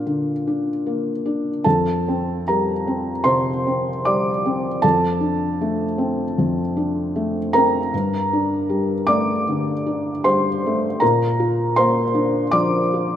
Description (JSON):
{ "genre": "neoclassical minimalist piano", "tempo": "77 BPM", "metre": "4/4", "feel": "rubato", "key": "G minor", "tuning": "A4 = 440 Hz", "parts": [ { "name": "felt-muted upright piano", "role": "solo", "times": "0.0-13.2 s", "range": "F2 to D6", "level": "-18 LUFS", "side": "equal", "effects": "none" } ], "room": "moderate lush hall reverb, RT60 2.5 s", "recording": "rough home demo mix", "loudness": "-18 LUFS", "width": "side -10 dB against mid", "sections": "0.0-13.2 A section", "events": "none", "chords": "0.0 Bb; 1.6 Fsus2; 4.8 Dm7/F; 7.9 Gmadd9; 11.0 Bb" }